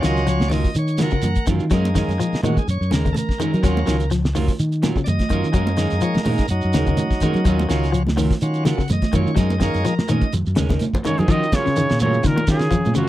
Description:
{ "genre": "afrobeat", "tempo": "126 BPM", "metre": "4/4", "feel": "swing 56% on 16ths", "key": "Eb minor", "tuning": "A4 = 441 Hz", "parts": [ { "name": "bright tonewheel organ", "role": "accompaniment", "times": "0.0-10.3 s", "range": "Gb3 to Gb5", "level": "-26 LUFS", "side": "equal", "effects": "overdrive, stopped rotary speaker" }, { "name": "semi-hollow electric guitar", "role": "arpeggios", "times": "0.0-13.1 s", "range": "Bb2 to Gb3", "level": "-24 LUFS", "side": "left 5 dB", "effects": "spring reverb" }, { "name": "electric guitar at the edge of break-up", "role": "stabs", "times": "0.0-13.1 s", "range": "Gb3 to Bb4", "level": "-26 LUFS", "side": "right 6 dB", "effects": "lush chorus" }, { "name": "fingered electric bass", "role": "bass", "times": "0.0-12.9 s", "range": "Db2 to Gb3", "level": "-21 LUFS", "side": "equal", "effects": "none" }, { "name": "cloth-damped thuddy drum kit", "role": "drums", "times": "0.0-13.1 s", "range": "hi-hat, kick drum, ride cymbal, snare drum", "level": "-22 LUFS", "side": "equal", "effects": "none" }, { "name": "shekere", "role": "percussion", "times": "0.0-13.1 s", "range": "none", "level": "-31 LUFS", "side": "right 3 dB", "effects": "none" }, { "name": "congas", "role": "percussion", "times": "0.4-13.1 s", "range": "none", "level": "-25 LUFS", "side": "right 2 dB", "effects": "none" }, { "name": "clear trumpet", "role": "melody", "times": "11.1-13.1 s", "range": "Gb4 to Eb5", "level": "-23 LUFS", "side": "equal", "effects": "none" }, { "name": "clear trombone", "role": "second line", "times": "11.1-13.1 s", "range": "Gb2 to Eb3", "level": "-26 LUFS", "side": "right 3 dB", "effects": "none" } ], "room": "little or no reverb", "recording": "dry, close 1970s-style studio recording", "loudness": "-17 LUFS", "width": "side -14 dB against mid", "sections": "0.0-11.3 A section; 11.3-13.1 B section", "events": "tonewheel organ solo 0.0-11.3; drum fill 10.6-11.3", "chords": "0.0 Ebm9; 1.7 Gb69; 3.6 Ebm9; 5.6 Gb69; 7.5 Ebm9; 9.4 Gb69; 11.3 Ebm9" }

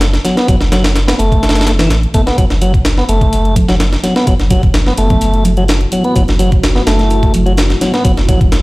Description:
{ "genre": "breakbeat, breaks", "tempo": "127 BPM", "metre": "4/4", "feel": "straight", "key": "F# minor", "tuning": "A4 = 440 Hz", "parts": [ { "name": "saturated sub bass", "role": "bass", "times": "0.0-8.6 s", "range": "F#1 to A1", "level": "-14 LUFS", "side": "equal", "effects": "none" }, { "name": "breakbeat sampler-style drum kit", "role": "drums", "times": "0.0-8.6 s", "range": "hi-hat, kick drum, snare drum", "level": "-13 LUFS", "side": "equal", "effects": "none" }, { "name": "electronic hi-hat", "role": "drums", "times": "0.0-8.6 s", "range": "none", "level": "-30 LUFS", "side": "right 1 dB", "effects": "none" }, { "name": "tonewheel organ", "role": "riff", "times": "0.2-8.4 s", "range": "E3 to B3", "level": "-16 LUFS", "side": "equal", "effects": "overdrive, dub echo" }, { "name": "congas", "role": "percussion", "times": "0.2-8.4 s", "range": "none", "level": "-21 LUFS", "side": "right 1 dB", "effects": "none" }, { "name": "dark analog pad", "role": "sustained chords", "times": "4.0-8.6 s", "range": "A3 to F#4", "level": "-23 LUFS", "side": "equal", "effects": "chorus, phaser, sidechain pumping" } ], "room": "light reverb", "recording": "played on a big sound system in a bare room, stone room reverb", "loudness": "-9 LUFS", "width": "side -21 dB against mid", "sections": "0.0-8.6 A section", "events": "none", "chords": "0.0 F#m7" }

